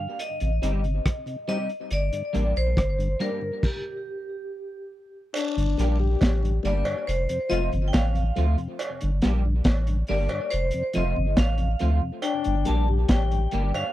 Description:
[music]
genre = roots reggae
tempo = 70 BPM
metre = 4/4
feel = straight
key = G minor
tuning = A4 = 440 Hz
[part]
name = vibraphone with hard mallets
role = melody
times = 0.0-13.9 s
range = G4 to A5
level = -30 LUFS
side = equal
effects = tape echo
[part]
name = electric guitar at the edge of break-up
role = accompaniment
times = 0.0-13.8 s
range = F3 to G4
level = -33 LUFS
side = right 2 dB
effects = tube saturation, analog chorus, tape echo
[part]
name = mellow tonewheel organ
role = accompaniment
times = 0.0-13.8 s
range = F2 to Eb4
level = -34 LUFS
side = left 2 dB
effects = slow rotary speaker, tape echo
[part]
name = crunchy breakbeat drum kit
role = drums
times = 0.2-13.7 s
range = crash cymbal, hi-hat, kick drum, rim click, snare drum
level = -25 LUFS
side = equal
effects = none
[part]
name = warm sub bass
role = bass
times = 0.4-13.7 s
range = F1 to D2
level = -23 LUFS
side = equal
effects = none
[part]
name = cowbell and jawbone-type rattle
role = percussion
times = 5.3-13.9 s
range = none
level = -34 LUFS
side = right 3 dB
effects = none
[part]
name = breathy trombone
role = second line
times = 5.4-13.5 s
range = D4 to G4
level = -30 LUFS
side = left 10 dB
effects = tape echo
[sound]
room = little or no reverb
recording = dry, close 1970s-style studio recording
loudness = -22 LUFS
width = side -14 dB against mid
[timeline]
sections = 0.0-5.4 A section; 5.4-13.9 B section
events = stop 3.6-5.4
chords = 0.2 Cm; 1.9 Gm; 3.6 N.C.; 5.4 Gm; 7.1 F; 8.8 Gm; 10.5 F; 12.2 Gm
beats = 0.19 1.05 | 1.91 2.77 3.63 4.49 | 5.35 6.21 7.07 7.93 | 8.79 9.65 10.51 11.37 | 12.23 13.09

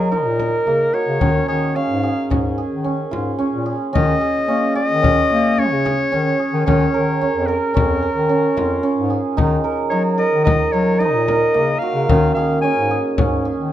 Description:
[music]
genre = contemporary instrumental, chamber music in an uneven meter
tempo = 110 BPM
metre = 5/4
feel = straight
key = unclear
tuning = A4 = 435 Hz
[part]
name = breathy clarinet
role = melody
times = 0.0-13.1 s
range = Ab4 to Ab5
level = -21 LUFS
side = left 3 dB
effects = none
[part]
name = hammered dulcimer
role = arpeggios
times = 0.0-13.7 s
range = Bb3 to Bb4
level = -19 LUFS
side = right 3 dB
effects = none
[part]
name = warm bass clarinet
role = bass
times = 0.0-13.7 s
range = F2 to Bb3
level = -21 LUFS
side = left 2 dB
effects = none
[part]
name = frame drum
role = percussion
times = 0.1-13.4 s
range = none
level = -21 LUFS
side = left 2 dB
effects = none
[sound]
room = light reverb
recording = close, detailed microphones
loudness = -15 LUFS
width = side -12 dB against mid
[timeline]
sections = 0.0-13.7 A section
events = none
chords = 0.0 Ebm; 1.2 Db; 3.9 Dbsus2; 6.7 Bbm; 9.4 Ebm; 12.1 Db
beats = 0.13 0.67 | 1.22 1.76 2.31 2.85 3.40 | 3.94 4.49 5.03 5.58 6.12 | 6.67 7.21 7.75 8.30 8.84 | 9.38 9.93 10.47 11.01 11.56 | 12.10 12.64 13.18

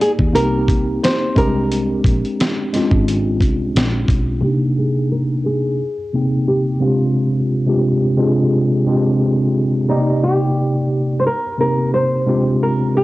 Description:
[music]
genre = lo-fi hip hop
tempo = 88 BPM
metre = 4/4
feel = swing 55% on 16ths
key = C minor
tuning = A4 = 441 Hz
[part]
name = nylon-string guitar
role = melody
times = 0.0-13.0 s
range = Eb4 to C5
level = -20 LUFS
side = equal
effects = low-pass filter, cassette tape
[part]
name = mellow tine electric piano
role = accompaniment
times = 0.0-13.0 s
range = C3 to G5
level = -16 LUFS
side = equal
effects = overdrive, medium stereo tremolo, cassette tape, low-pass filter
[part]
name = dusty soul sampler-style drum kit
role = drums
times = 0.0-4.3 s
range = hi-hat, kick drum, snare drum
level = -17 LUFS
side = equal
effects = cassette tape
[part]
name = vintage muted fingered electric bass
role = bass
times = 0.2-4.4 s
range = Ab1 to Eb2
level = -21 LUFS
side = equal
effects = none
[sound]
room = light reverb, digital ambience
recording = home recording on cassette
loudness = -15 LUFS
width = side -18 dB against mid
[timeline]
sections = 0.0-4.4 A section; 4.4-13.0 B section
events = filter sweep 4.4-13.0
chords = 0.3 Cm7; 1.4 Bb13; 4.4 Cm9; 5.8 Abmaj9; 6.8 Fm69/C; 9.9 Cm9; 11.2 Cm7; 12.3 Bb13/C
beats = 0.34 1.02 | 1.70 2.38 3.07 3.75 | 4.43 5.11 5.79 6.47 | 7.16 7.84 8.52 9.20 | 9.88 10.57 11.25 11.93 | 12.61

